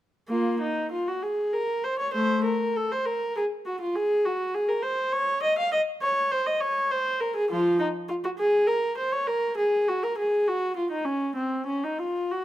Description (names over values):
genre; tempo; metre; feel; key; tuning
classical, baroque-style suite movement for unaccompanied viola; 67 BPM (dotted quarters); 6/8; uneven beats, rubato; Bb minor; A4 = 440 Hz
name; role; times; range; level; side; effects
warm viola; solo; 0.3-12.4 s; F3 to F5; -24 LUFS; equal; none
room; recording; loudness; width
moderate recital hall reverb, RT60 1.3 s; close, detailed microphones; -24 LUFS; side -14 dB against mid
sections
0.3-12.4 A section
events
none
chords
none